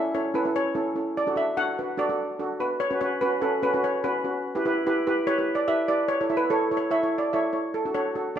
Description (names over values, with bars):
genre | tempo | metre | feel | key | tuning
calypso | 146 BPM | 4/4 | straight | D major | A4 = 440 Hz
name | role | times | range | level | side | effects
steel pan | melody | 0.0-8.4 s | A4 to F#5 | -26 LUFS | equal | none
steel pan | accompaniment | 0.0-8.4 s | C#4 to E5 | -26 LUFS | right 1 dB | none
room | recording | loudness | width
wet recital hall reverb, RT60 1.6 s | close, detailed microphones | -23 LUFS | side -9 dB against mid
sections
0.0-7.7 A section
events
steel pan solo 0.0-7.7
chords
0.0 A; 1.2 D; 2.8 Bsus2; 4.5 Em; 6.1 A/E; 7.7 D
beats
0.34 0.75 | 1.17 1.58 1.99 2.40 | 2.81 3.22 3.63 4.04 | 4.45 4.86 5.28 5.69 | 6.10 6.51 6.92 7.33 | 7.74 8.15